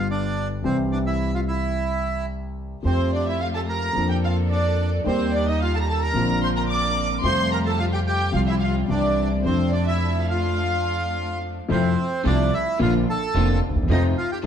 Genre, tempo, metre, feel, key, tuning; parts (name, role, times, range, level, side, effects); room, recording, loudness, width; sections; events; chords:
tango; 109 BPM; 4/4; rubato; F major; A4 = 442 Hz
bandoneon; melody; 0.0-14.4 s; C4 to D6; -27 LUFS; right 2 dB
dark concert grand piano; accompaniment; 0.0-14.5 s; F1 to A4; -24 LUFS; left 2 dB
upright bass; bass; 0.0-14.5 s; F1 to F2; -25 LUFS; right 1 dB
dark studio violin section; second line; 2.8-11.4 s; C5 to D6; -27 LUFS; equal
clear studio string section; stabs; 2.8-14.5 s; F3 to Bb4; -32 LUFS; right 3 dB
wet large studio reverb, RT60 1.2 s; heard from further back in the room; -20 LUFS; side -8 dB against mid
0.0-11.7 A section; 11.7-14.5 A section
0.0 G; 0.6 C; 2.8 Fadd9; 4.0 Bbmaj7/F; 5.1 Eb; 6.1 Bbadd9; 7.2 Fadd9; 8.3 Csus4; 8.9 Cadd9; 9.4 F6; 11.7 Fmaj7; 12.8 Bb; 13.9 F7